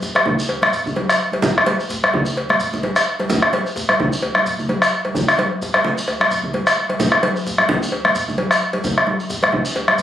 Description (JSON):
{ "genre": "west african traditional, West African drum ensemble", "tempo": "130 BPM", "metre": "4/4", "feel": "swing 56% on 16ths", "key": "none", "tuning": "none", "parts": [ { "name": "djembe", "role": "percussion", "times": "0.0-10.0 s", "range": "none", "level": "-34 LUFS", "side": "left 3 dB", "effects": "none" }, { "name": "shekere", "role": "percussion", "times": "0.0-10.0 s", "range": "none", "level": "-29 LUFS", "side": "equal", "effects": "none" }, { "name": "congas", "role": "percussion", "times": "0.1-10.0 s", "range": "none", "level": "-23 LUFS", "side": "right 1 dB", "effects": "none" }, { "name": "bombo", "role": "percussion", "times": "0.2-10.0 s", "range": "none", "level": "-17 LUFS", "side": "left 1 dB", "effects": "none" }, { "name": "cowbell", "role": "percussion", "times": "0.2-9.9 s", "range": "none", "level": "-25 LUFS", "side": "left 1 dB", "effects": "none" } ], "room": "wet studio ambience, RT60 0.5 s", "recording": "recorded on a phone in the room, studio reverb, compression", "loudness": "-16 LUFS", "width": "side -11 dB against mid", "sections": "0.0-10.0 A section", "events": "speeding up 0.0-10.0", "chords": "none", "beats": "0.02 0.49 0.96 | 1.43 1.90 2.37 2.83 | 3.30 3.76 4.23 4.69 | 5.16 5.62 6.08 6.54 | 7.00 7.46 7.92 8.38 | 8.84 9.30 9.76" }